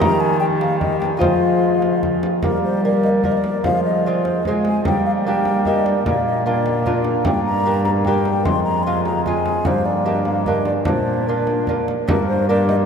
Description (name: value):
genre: classical, renaissance-style consort dance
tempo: 149 BPM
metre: 3/4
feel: straight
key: unclear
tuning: A4 = 443 Hz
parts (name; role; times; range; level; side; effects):
- mellow hollow concert flute; melody; 0.0-12.7 s; Bb4 to C6; -22 LUFS; left 3 dB; none
- lute; accompaniment; 0.0-12.9 s; F2 to Eb5; -22 LUFS; equal; none
- warm bassoon; accompaniment; 0.0-12.9 s; G3 to D4; -24 LUFS; equal; none
- dark cello; bass; 0.0-12.9 s; F2 to Ab3; -22 LUFS; right 2 dB; none
- frame drum; percussion; 0.0-12.9 s; none; -25 LUFS; right 1 dB; none
room: wet cathedral reverb, RT60 6.1 s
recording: in a vast, echoing space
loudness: -16 LUFS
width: side -6 dB against mid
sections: 0.0-2.4 A section; 2.4-12.1 B section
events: none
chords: 0.0 Eb; 1.2 Fm; 2.4 Gm; 3.6 Fm; 4.9 Gm; 6.1 Bb; 7.3 Gm; 8.5 Fm; 9.7 Gm; 10.9 Bb; 12.1 Gm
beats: | 0.01 0.41 0.81 | 1.21 1.62 2.03 | 2.43 2.84 3.24 | 3.64 4.04 4.45 | 4.85 5.25 5.65 | 6.05 6.46 6.85 | 7.25 7.65 8.05 | 8.45 8.85 9.25 | 9.65 10.05 10.46 | 10.87 11.27 11.68 | 12.09 12.49